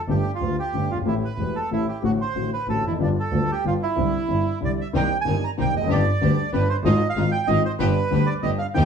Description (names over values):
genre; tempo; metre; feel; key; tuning
tango; 186 BPM; 3/4; rubato; C major, C minor from 4.9 s; A4 = 441 Hz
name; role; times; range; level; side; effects
bandoneon; melody; 0.1-8.8 s; D4 to Bb5; -25 LUFS; right 5 dB; slapback echo, plate reverb
warm concert grand piano; accompaniment; 0.1-8.8 s; E1 to G4; -24 LUFS; left 5 dB; none
rich double bass; bass; 0.1-8.8 s; E1 to Eb2; -25 LUFS; right 2 dB; none
bright chamber string section; stabs; 4.9-8.8 s; Ab3 to Bb4; -33 LUFS; right 3 dB; none
room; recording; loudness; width
light reverb; none; -20 LUFS; side -7 dB against mid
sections
0.0-4.9 A section; 4.9-8.8 B section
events
none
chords
0.1 Gadd9; 1.1 Am7; 2.0 D7/A; 3.0 G7; 4.0 Cadd9; 4.9 Cm7; 5.9 G; 6.9 Fm7/Ab; 7.8 G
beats
| 0.07 0.40 0.73 | 1.05 1.38 1.70 | 2.03 2.35 2.67 | 3.00 3.32 3.64 | 3.96 4.29 4.61 | 4.94 5.26 5.58 | 5.90 6.22 6.54 | 6.85 7.17 7.49 | 7.80 8.12 8.44 | 8.77